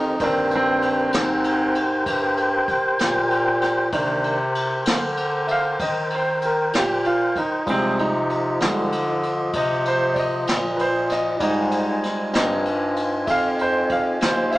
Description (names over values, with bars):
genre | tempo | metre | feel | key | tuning
slow blues | 64 BPM (dotted quarters) | 12/8 | straight | C minor | A4 = 440 Hz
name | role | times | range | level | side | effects
clear upright piano | accompaniment | 0.0-14.6 s | Eb3 to F5 | -22 LUFS | right 1 dB | none
tonewheel organ | sustained chords | 0.0-14.6 s | Eb3 to Ab5 | -24 LUFS | equal | slow rotary speaker, overdrive
warm bass clarinet | bass | 0.0-14.6 s | Eb2 to Eb3 | -24 LUFS | equal | none
jazz brush drum kit | drums | 0.2-14.6 s | kick drum, ride cymbal, snare drum | -28 LUFS | equal | none
room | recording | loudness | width
moderate studio reverb, RT60 0.5 s | band playing live in one room, small speaker sound | -19 LUFS | side -18 dB against mid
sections
0.0-14.6 A section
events
upright piano solo 0.0-14.6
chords
0.0 Cm7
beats
| 0.19 1.13 2.06 3.00 | 3.93 4.86 5.80 6.73 | 7.67 8.60 9.54 10.47 | 11.41 12.35 13.28 14.22